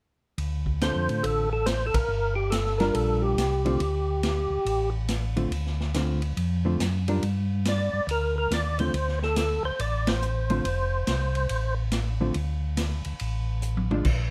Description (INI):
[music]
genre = soul jazz organ trio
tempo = 140 BPM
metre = 4/4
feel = swing 65% on 8ths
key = D minor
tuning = A4 = 440 Hz
[part]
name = mellow tonewheel organ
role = bass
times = 0.4-14.3 s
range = F1 to A2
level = -30 LUFS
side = equal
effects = overdrive, chorus vibrato, slow rotary speaker
[part]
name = swinging big-band drum kit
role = drums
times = 0.4-14.2 s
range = crash cymbal, hi-hat, kick drum, ride cymbal, snare drum, toms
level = -35 LUFS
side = equal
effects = none
[part]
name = percussive tonewheel organ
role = melody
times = 0.8-4.9, 7.7-11.7 s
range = G4 to D5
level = -30 LUFS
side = equal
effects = slow rotary speaker, overdrive, chorus vibrato
[part]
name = hollow-body jazz guitar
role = accompaniment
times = 0.8-14.1 s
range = D3 to Bb4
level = -31 LUFS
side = equal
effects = none
[sound]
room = light reverb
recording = none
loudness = -26 LUFS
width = mono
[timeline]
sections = 0.4-14.3 A section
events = band accent 1.9, 10.0; drum fill 13.6-14.1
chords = 0.4 Dm7; 2.1 Gm7; 3.8 Dm7; 7.2 G5; 8.9 Dm7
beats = | 0.38 0.81 1.24 1.67 | 2.10 2.53 2.96 3.38 | 3.81 4.24 4.67 5.10 | 5.52 5.95 6.38 6.80 | 7.23 7.66 8.09 8.51 | 8.94 9.37 9.79 10.22 | 10.65 11.07 11.50 11.93 | 12.35 12.78 13.21 13.63 | 14.06